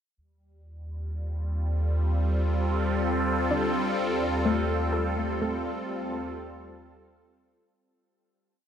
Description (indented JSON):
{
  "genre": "ambient",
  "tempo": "63 BPM",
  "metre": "4/4",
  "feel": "straight",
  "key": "unclear",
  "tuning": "A4 = 440 Hz",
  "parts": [
    { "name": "evolving wavetable pad", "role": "sustained chords", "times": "1.5-7.8 s", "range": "G3 to A4", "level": "-28 LUFS", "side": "equal", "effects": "phaser, built-in reverb, shimmer reverb" },
    { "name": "round analog bass", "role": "bass", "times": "0.2-7.7 s", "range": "Eb2", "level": "-29 LUFS", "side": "equal", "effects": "none" },
    { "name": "soft round pluck", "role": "arpeggios", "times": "3.5-8.4 s", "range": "A3 to A4", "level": "-32 LUFS", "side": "left 2 dB", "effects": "analog chorus, ping-pong delay, shimmer reverb" }
  ],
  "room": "wet huge ambient reverb, RT60 8.0 s",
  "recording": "none",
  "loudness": "-25 LUFS",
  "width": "side -9 dB against mid",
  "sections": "0.2-7.8 A section",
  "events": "fade-in on ambient pad 0.2-7.8; fade-in on synth pluck 0.2-7.8; fade-out on analog synth bass 0.2-7.8; fade-out 4.0-7.8",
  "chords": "0.2 F9/Eb",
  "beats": "| 0.18 1.13 2.08 3.04 | 3.99 4.94 5.89 6.84"
}